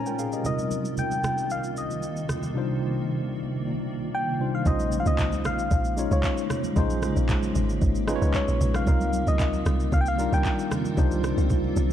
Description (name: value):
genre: amapiano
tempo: 114 BPM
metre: 4/4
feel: straight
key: Bb dorian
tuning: A4 = 440 Hz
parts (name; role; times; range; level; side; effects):
- tine electric piano; accompaniment; 0.0-11.9 s; Bb2 to Bb5; -29 LUFS; left 1 dB; medium stereo tremolo
- granular cloud pad; sustained chords; 0.0-11.9 s; C2 to Eb5; -32 LUFS; right 1 dB; built-in reverb, sidechain pumping
- smooth R&B drum kit; drums; 0.1-11.9 s; handclaps, kick drum, rim click, shaker; -28 LUFS; equal; none
- soft struck synth lead; melody; 0.5-10.7 s; Db5 to G5; -30 LUFS; left 1 dB; chorus, tape echo
- congas; percussion; 0.5-11.9 s; none; -34 LUFS; right 3 dB; none
- woody log drum bass; bass; 4.7-11.9 s; Ab1 to Db2; -25 LUFS; equal; none
room: light reverb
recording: dark, warm production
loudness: -23 LUFS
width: side -10 dB against mid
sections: 0.0-4.7 A section; 4.7-11.9 B section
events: tine electric piano fill 0.0-0.5; drop 4.7-11.9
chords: 0.5 Cm11; 4.7 Bbm11; 8.9 Cm11